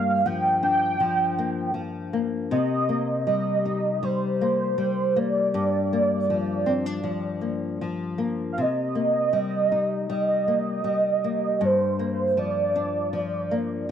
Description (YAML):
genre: indie pop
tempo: 79 BPM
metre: 4/4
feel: straight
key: G minor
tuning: A4 = 437 Hz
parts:
  - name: warm velvety synth lead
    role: melody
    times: 0.0-13.9 s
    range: C5 to G5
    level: -24 LUFS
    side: right 3 dB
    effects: ensemble chorus, slapback echo
  - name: flamenco guitar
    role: accompaniment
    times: 0.0-13.9 s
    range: G2 to Eb4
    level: -26 LUFS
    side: left 4 dB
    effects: analog chorus, warbly pitch drift
room: small room reverb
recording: dry, close 1970s-style studio recording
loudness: -22 LUFS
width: side -9 dB against mid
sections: 0.0-8.6 A section; 8.6-13.9 A section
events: none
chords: 0.0 Gm7; 2.5 Cm7; 5.5 Gm7; 8.6 Cm7; 11.6 Gm7